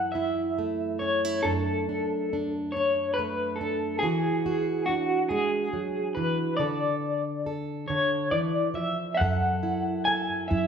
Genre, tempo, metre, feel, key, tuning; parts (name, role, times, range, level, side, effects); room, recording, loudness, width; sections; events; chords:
acoustic folk-pop ballad; 46 BPM (dotted quarters); 6/8; straight; A4 = 440 Hz
electric guitar through a small old amp; melody; 0.0-10.7 s; F#4 to G#5; -27 LUFS; left 1 dB; tremolo
fingerpicked plugged-in steel-string acoustic guitar; accompaniment; 0.0-10.7 s; F#2 to A4; -29 LUFS; right 2 dB
vintage muted fingered electric bass; bass; 9.2-10.7 s; F#2; -29 LUFS; equal
wet large studio reverb, RT60 1.2 s; band playing live in one room; -25 LUFS; side -7 dB against mid
0.0-10.7 A section
0.0 F#m7; 1.4 Bm7/F# (rootless); 4.0 E9; 6.6 Dm; 9.2 F#m7